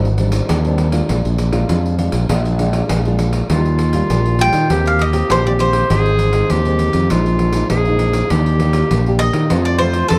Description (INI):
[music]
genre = samba and choro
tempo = 100 BPM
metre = 4/4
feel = straight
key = Eb major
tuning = A4 = 440 Hz
[part]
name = nylon-string guitar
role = accompaniment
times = 0.0-10.2 s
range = F2 to G4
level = -24 LUFS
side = equal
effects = none
[part]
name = growling fingered electric bass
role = bass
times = 0.0-10.2 s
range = Ab1 to Eb3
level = -19 LUFS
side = equal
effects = overdrive
[part]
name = pandeiro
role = percussion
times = 0.0-10.2 s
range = none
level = -25 LUFS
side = equal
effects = none
[part]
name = clear clarinet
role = second line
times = 3.5-10.2 s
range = F4 to Ab4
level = -23 LUFS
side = equal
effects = none
[part]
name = bowl-back mandolin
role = melody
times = 4.4-10.2 s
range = A4 to G5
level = -21 LUFS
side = equal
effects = none
[sound]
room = little or no reverb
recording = close, detailed microphones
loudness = -16 LUFS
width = mono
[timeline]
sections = 0.0-3.5 A section; 3.5-10.2 B section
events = none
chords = 0.0 Abmaj7#11; 1.1 Bb7; 3.5 Ebadd9; 4.7 Cm7/Eb; 5.9 Ab; 7.1 Bb7sus4; 8.3 Ebmaj7; 9.5 F